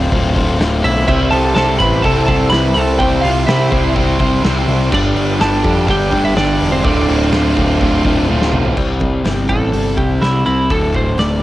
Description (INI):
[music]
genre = quiet-loud alternative rock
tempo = 125 BPM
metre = 4/4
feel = straight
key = unclear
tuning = A4 = 441 Hz
[part]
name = twelve-string electric guitar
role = melody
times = 0.0-11.4 s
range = C4 to B5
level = -18 LUFS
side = right 2 dB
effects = tape echo
[part]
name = crunchy overdriven guitar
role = riff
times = 0.0-11.4 s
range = D2 to C5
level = -18 LUFS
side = left 4 dB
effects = cassette tape
[part]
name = growling picked electric bass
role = bass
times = 0.0-11.4 s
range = D1 to F2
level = -18 LUFS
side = equal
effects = overdrive
[part]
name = loose indie drum kit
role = drums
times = 0.1-11.3 s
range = crash cymbal, hi-hat, kick drum, snare drum, toms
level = -20 LUFS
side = equal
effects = cassette tape
[part]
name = overdriven semi-hollow guitar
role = riff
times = 1.1-8.8 s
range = D2 to C5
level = -21 LUFS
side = right 8 dB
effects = cassette tape
[part]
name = picked steel-string acoustic guitar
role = arpeggios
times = 8.8-11.4 s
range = D2 to G4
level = -26 LUFS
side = right 4 dB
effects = none
[sound]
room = light reverb, studio ambience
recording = home recording on cassette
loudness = -12 LUFS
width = side -15 dB against mid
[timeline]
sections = 0.0-8.8 A section; 8.8-11.4 B section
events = drum fill 8.3-8.8; clean electric guitar solo 8.8-11.4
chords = 0.0 Dm7; 1.1 C; 4.9 Gsus2; 6.8 Dm7; 8.8 C; 10.7 D5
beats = 0.12 0.60 | 1.08 1.56 2.04 2.52 | 3.00 3.48 3.96 4.44 | 4.92 5.40 5.88 6.37 | 6.85 7.33 7.81 8.29 | 8.77 9.25 9.74 10.22 | 10.70 11.19